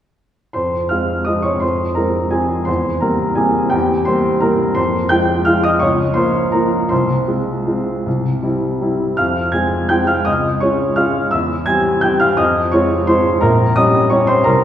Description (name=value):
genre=classical, piano waltz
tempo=152-182 BPM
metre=3/4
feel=rubato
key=F minor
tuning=A4 = 436 Hz
part: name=clear upright piano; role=solo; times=0.5-14.6 s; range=Bb1 to Ab6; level=-14 LUFS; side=equal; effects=none
room=wet scoring stage reverb, RT60 1.6 s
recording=heard from further back in the room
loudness=-14 LUFS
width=side -10 dB against mid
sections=0.5-14.6 A section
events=none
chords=0.5 Fm; 2.7 C7/E; 4.8 Fm; 5.8 Bbm/Db; 6.9 Fm/C; 8.1 C; 9.2 Fm; 10.3 Db; 11.3 C/E; 12.4 Fm; 13.4 Gdim/Bb